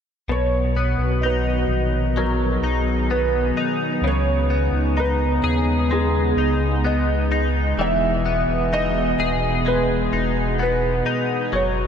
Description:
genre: dream pop.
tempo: 64 BPM.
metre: 4/4.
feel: straight.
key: B major.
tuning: A4 = 440 Hz.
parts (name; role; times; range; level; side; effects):
felt-muted upright piano; melody; 0.3-11.9 s; G#4 to E5; -25 LUFS; right 2 dB; analog chorus, analog delay.
warbly tape-like pad; sustained chords; 0.6-11.9 s; B2 to G#4; -24 LUFS; equal; chorus, built-in reverb.
direct-recorded clean electric guitar; arpeggios; 0.3-11.9 s; B2 to G#4; -24 LUFS; left 3 dB; analog chorus, analog delay.
sub bass with octave; bass; 0.3-11.9 s; D#1 to D#2; -23 LUFS; equal; none.
mellow tine electric piano; texture; 1.2-7.9 s; D#5 to A#5; -36 LUFS; left 1 dB; none.
room: wet huge ambient reverb, RT60 7.0 s.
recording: dreamy mix soaked in reverb.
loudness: -18 LUFS.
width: side -7 dB against mid.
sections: 0.3-11.9 A section.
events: none.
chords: 0.3 Bmaj7; 4.0 C#sus2; 7.8 Emaj7.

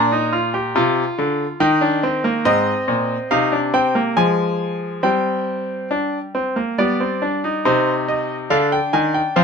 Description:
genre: classical, baroque-style 3-part fugue for grand piano.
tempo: 70 BPM.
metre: 3/4.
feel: straight.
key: C minor.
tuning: A4 = 436 Hz.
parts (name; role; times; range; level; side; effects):
bright grand piano; solo; 0.0-9.4 s; Ab2 to Bb5; -16 LUFS; equal; none.
room: light reverb.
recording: close, detailed microphones.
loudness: -17 LUFS.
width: side -6 dB against mid.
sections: 0.0-7.7 A section; 7.7-9.4 B section.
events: none.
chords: 0.0 Gm/Bb; 1.6 Cm/Eb; 2.5 Ab; 4.2 Fm; 5.0 Gsus4; 6.8 G; 7.7 Cm.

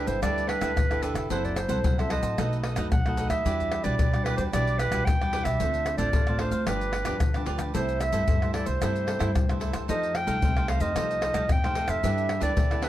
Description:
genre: samba and choro.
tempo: 112 BPM.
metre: 4/4.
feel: straight.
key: G major.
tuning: A4 = 438 Hz.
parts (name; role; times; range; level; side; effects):
warm clarinet; melody; 0.0-12.9 s; A4 to G5; -29 LUFS; right 1 dB; none.
cavaquinho; accompaniment; 0.0-12.9 s; D4 to F#5; -34 LUFS; right 4 dB; none.
nylon-string guitar; accompaniment; 0.0-12.9 s; G2 to A4; -34 LUFS; left 2 dB; none.
upright bass; bass; 0.0-12.9 s; F1 to G2; -30 LUFS; equal; none.
egg shaker, surdo, pandeiro and tamborim; percussion; 0.1-12.9 s; none; -28 LUFS; left 1 dB; none.
room: moderate studio reverb, RT60 0.8 s.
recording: dark, warm production.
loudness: -24 LUFS.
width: side -13 dB against mid.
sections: 0.0-12.9 A section.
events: none.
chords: 0.0 G69; 1.3 F#m7b5; 2.4 B7; 3.5 Em9; 5.6 Dm7; 6.7 G7; 7.7 C6; 9.9 F9; 12.0 G69.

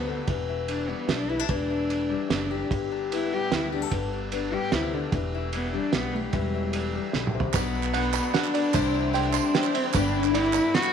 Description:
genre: indie folk with a building arrangement.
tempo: 149 BPM.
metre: 3/4.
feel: straight.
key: unclear.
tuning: A4 = 440 Hz.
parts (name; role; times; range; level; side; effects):
dark cello; melody; 0.0-10.9 s; G3 to G4; -28 LUFS; left 1 dB; none.
fingerpicked steel-string acoustic guitar; accompaniment; 0.0-7.6 s; G2 to A4; -31 LUFS; left 10 dB; none.
upright bass; bass; 0.0-10.6 s; E1 to D2; -32 LUFS; equal; none.
cloth-damped thuddy drum kit; drums; 0.3-10.8 s; kick drum, ride cymbal, snare drum, toms; -30 LUFS; right 5 dB; none.
picked twelve-string acoustic guitar; accompaniment; 7.5-10.9 s; G2 to G4; -29 LUFS; left 12 dB; none.
warm brass ensemble; sustained chords; 7.5-10.9 s; G3 to C6; -36 LUFS; equal; none.
bluegrass banjo; arpeggios; 7.5-10.9 s; B4 to C6; -31 LUFS; right 10 dB; tape echo.
group handclap; percussion; 7.5-10.9 s; none; -36 LUFS; right 14 dB; none.
tambourine; percussion; 7.5-10.6 s; none; -41 LUFS; right 15 dB; none.
room: moderate echo chamber reverb, RT60 1.6 s, studio reverb.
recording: 1960s-style stereo with parts hard left and right.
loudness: -24 LUFS.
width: side -7 dB against mid.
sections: 0.0-7.5 A section; 7.5-10.9 B section.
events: drum fill 7.1-7.5.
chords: 0.3 Em7; 2.7 G; 5.1 Em7; 7.5 Bm; 8.7 C; 9.9 G.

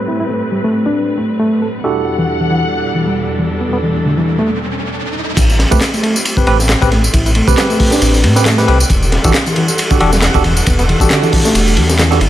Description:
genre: breakbeat, breaks.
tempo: 136 BPM.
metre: 4/4.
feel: swing 56% on 16ths.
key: A dorian.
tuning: A4 = 439 Hz.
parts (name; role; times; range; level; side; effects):
dark studio string section; sustained chords; 0.0-12.3 s; E2 to F#5; -21 LUFS; left 1 dB; vintage 12-bit sampler grit, sidechain pumping.
bright tine electric piano; stabs; 0.0-12.2 s; C4 to B4; -18 LUFS; right 2 dB; slow stereo tremolo, vintage 12-bit sampler grit, low-pass filter, tape echo.
reed electric piano; riff; 0.1-12.3 s; D3 to A4; -17 LUFS; equal; tube saturation, tape echo.
riser; sound effects; 3.3-5.4 s; none; -24 LUFS; right 2 dB; none.
dark detuned saw bass; bass; 5.4-12.3 s; E1 to A2; -14 LUFS; equal; none.
crunchy breakbeat drum kit; drums; 5.4-12.3 s; crash cymbal, hi-hat, kick drum, ride cymbal, snare drum; -14 LUFS; equal; none.
electronic tambourine and handclaps; drums; 5.4-12.2 s; none; -20 LUFS; left 1 dB; overdrive.
room: light reverb, studio ambience.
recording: low-pass filter.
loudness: -11 LUFS.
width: side -13 dB against mid.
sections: 0.0-5.4 A section; 5.4-12.3 B section.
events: filter sweep 0.0-5.4; riser 3.3-5.4; break 4.5-5.4; drop 5.4-12.3.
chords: 0.0 Am9; 1.8 Em11; 5.4 Am9; 8.9 Em11.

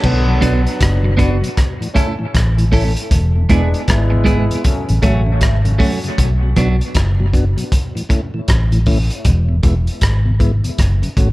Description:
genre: dub reggae.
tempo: 78 BPM.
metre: 4/4.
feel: swing 62% on 16ths.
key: B dorian.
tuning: A4 = 443 Hz.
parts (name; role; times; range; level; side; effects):
mellow trombone section; second line; 0.0-5.3 s; C#3 to F#4; -23 LUFS; left 1 dB; dub echo.
vintage muted fingered electric bass; bass; 0.0-11.3 s; E1 to B1; -15 LUFS; equal; none.
crunchy breakbeat drum kit; drums; 0.0-11.3 s; crash cymbal, hi-hat, kick drum, rim click; -17 LUFS; equal; none.
mellow tonewheel organ; accompaniment; 0.3-11.3 s; E2 to F#4; -24 LUFS; left 1 dB; slow rotary speaker, dub echo.
clean electric guitar; accompaniment; 0.4-6.8 s; F#3 to B4; -22 LUFS; right 3 dB; dub echo.
room: small room reverb.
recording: echo-heavy mix.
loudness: -13 LUFS.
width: side -19 dB against mid.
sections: 0.0-11.3 A section.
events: none.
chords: 0.0 Bm; 1.6 A; 3.1 E; 4.6 F#m; 6.2 Bm; 7.7 A; 9.3 E; 10.8 F#m.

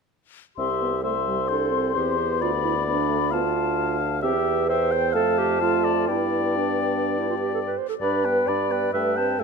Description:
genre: quick classical-period movement for wind quintet.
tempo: 130 BPM.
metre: 4/4.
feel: rubato.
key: C major.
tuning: A4 = 440 Hz.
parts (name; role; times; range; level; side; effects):
hollow concert flute; melody; 0.6-9.4 s; G5 to C6; -28 LUFS; left 13 dB; none.
warm oboe; second line; 0.6-9.4 s; B4 to G5; -28 LUFS; left 8 dB; none.
mellow French horn; accompaniment; 0.6-9.4 s; G3 to D4; -31 LUFS; left 2 dB; none.
mellow clarinet; accompaniment; 0.6-9.4 s; D4 to D5; -25 LUFS; right 9 dB; none.
mellow bassoon; bass; 0.6-9.4 s; C2 to G2; -27 LUFS; right 2 dB; none.
room: light reverb.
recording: close, detailed microphones.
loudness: -21 LUFS.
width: side -5 dB against mid.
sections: 0.6-9.4 A section.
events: none.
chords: 0.6 C; 2.4 Bdim/D; 4.2 C/E; 5.1 Dm/F; 6.1 G.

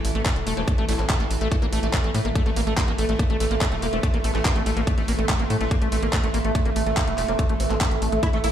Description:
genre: psychedelic trance.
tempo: 143 BPM.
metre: 4/4.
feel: straight.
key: A phrygian.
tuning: A4 = 440 Hz.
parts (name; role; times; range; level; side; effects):
pulsing gated texture; sustained chords; 0.0-8.5 s; E3 to E4; -32 LUFS; equal; chorus, built-in reverb, sidechain pumping.
tight sequencer bass; bass; 0.0-8.5 s; E1 to A2; -24 LUFS; equal; none.
garage drum kit; drums; 0.0-8.5 s; handclaps, hi-hat, ride cymbal; -29 LUFS; equal; overdrive.
deep dark ambient pad; texture; 0.0-8.5 s; A4 to C6; -30 LUFS; right 4 dB; chorus, built-in reverb, sidechain pumping.
liquid acid bass; riff; 0.2-8.5 s; A3 to Bb3; -29 LUFS; left 1 dB; chorus, auto-pan, sidechain pumping, digital delay.
electronic kick drum; drums; 0.3-8.3 s; none; -22 LUFS; equal; overdrive.
formant-sweep wobble bass; second line; 0.6-1.1, 3.9-4.6, 7.3-7.8 s; C4; -38 LUFS; right 1 dB; none.
dense compressed supersaw; melody; 8.2-8.5 s; A3 to E4; -25 LUFS; equal; phaser, sidechain pumping.
room: light reverb, digital ambience.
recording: played on a big sound system in a bare room, large studio reverb.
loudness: -20 LUFS.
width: side -10 dB against mid.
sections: 0.0-8.5 A section.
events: none.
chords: 0.0 A5.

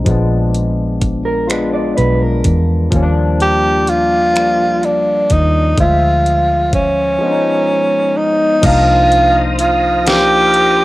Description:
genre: slow six-eight R&B.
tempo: 42 BPM (dotted quarters).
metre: 6/8.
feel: straight.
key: C minor.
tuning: A4 = 439 Hz.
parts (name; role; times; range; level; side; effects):
barky tine electric piano; accompaniment; 0.0-10.8 s; E3 to E5; -18 LUFS; left 3 dB; lush chorus, cassette tape.
vintage muted fingered electric bass; bass; 0.0-10.8 s; Bb1 to E2; -17 LUFS; equal; none.
smooth R&B drum kit; drums; 0.1-10.8 s; crash cymbal, finger snaps, hi-hat, kick drum, snare drum; -18 LUFS; equal; cassette tape.
mellow electric guitar; second line; 1.3-2.9 s; Bb4 to D5; -20 LUFS; right 3 dB; cassette tape, analog delay.
breathy tenor saxophone; melody; 3.4-10.8 s; Db4 to G4; -12 LUFS; right 1 dB; cassette tape.
tonewheel organ; sustained chords; 8.6-10.8 s; C5 to Eb6; -22 LUFS; equal; overdrive, chorus vibrato, slow rotary speaker, cassette tape.
room: light reverb, digital ambience.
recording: home recording on cassette.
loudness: -11 LUFS.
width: side -18 dB against mid.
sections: 0.0-8.6 A section; 8.6-10.8 B section.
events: silent gap 7.2-8.6.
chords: 0.1 Bb7b9; 2.9 Ebmaj9; 5.8 Dm7b5; 7.2 Db9; 8.6 Cm11.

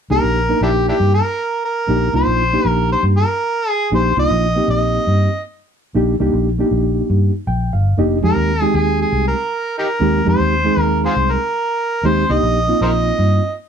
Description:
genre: straight-eighth soul blues.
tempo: 118 BPM.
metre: 4/4.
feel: straight.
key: C minor.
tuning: A4 = 440 Hz.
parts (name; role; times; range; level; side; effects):
overdriven harmonica; melody; 0.1-13.5 s; D4 to Eb5; -18 LUFS; right 1 dB; none.
reed electric piano; accompaniment; 0.1-13.4 s; Ab3 to G5; -19 LUFS; right 2 dB; fast tremolo.
vintage muted fingered electric bass; bass; 0.1-13.4 s; F1 to G2; -18 LUFS; left 1 dB; none.
room: moderate studio ambience, RT60 0.5 s.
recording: band playing live in one room.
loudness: -14 LUFS.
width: side -7 dB against mid.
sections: 0.1-13.7 A section.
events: reed electric piano fill 7.2-8.2.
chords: 0.1 Cm7; 8.2 Fm7 (rootless); 12.3 Cm7.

